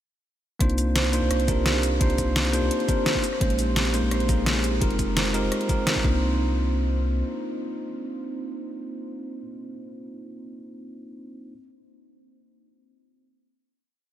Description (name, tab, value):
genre	liquid drum and bass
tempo	171 BPM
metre	4/4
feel	straight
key	C minor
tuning	A4 = 440 Hz
part	bell-like tine electric piano	accompaniment	0.6-11.5 s	Ab3 to C5	-28 LUFS	equal	vintage 12-bit sampler grit, diffuse ambient delay
part	vibraphone with soft mallets	arpeggios	0.6-6.4 s	C4 to C5	-31 LUFS	right 2 dB	diffuse ambient delay
part	warm sub bass	bass	0.6-7.2 s	F1 to C2	-26 LUFS	equal	none
part	electronic kick drum	drums	0.6-6.1 s	none	-25 LUFS	equal	overdrive
part	pop drum kit	drums	0.6-5.9 s	hi-hat, rim click, shaker, snare drum	-27 LUFS	equal	overdrive
room	light reverb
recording	none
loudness	-22 LUFS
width	side -12 dB against mid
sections	0.6-6.2 drop; 6.2-9.0 final hit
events	drop 0.6-6.2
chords	0.6 Cm11; 3.2 Bbm11; 4.8 Fm11; 6.0 Cm11